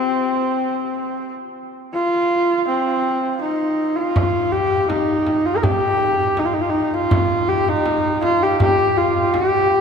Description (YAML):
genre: mongolian traditional, Mongolian folk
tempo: 81 BPM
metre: 4/4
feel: straight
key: C yu mode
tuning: A4 = 440 Hz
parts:
  - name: clear horsehead fiddle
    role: melody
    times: 0.0-9.8 s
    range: C4 to Bb4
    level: -17 LUFS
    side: equal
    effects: none
  - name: frame drum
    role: percussion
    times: 4.2-9.8 s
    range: none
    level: -23 LUFS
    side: right 1 dB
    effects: none
room: wet cathedral reverb, RT60 4.9 s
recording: recorded in a church or concert hall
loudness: -16 LUFS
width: side -6 dB against mid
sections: 0.0-4.2 A section; 4.2-9.8 B section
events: none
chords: none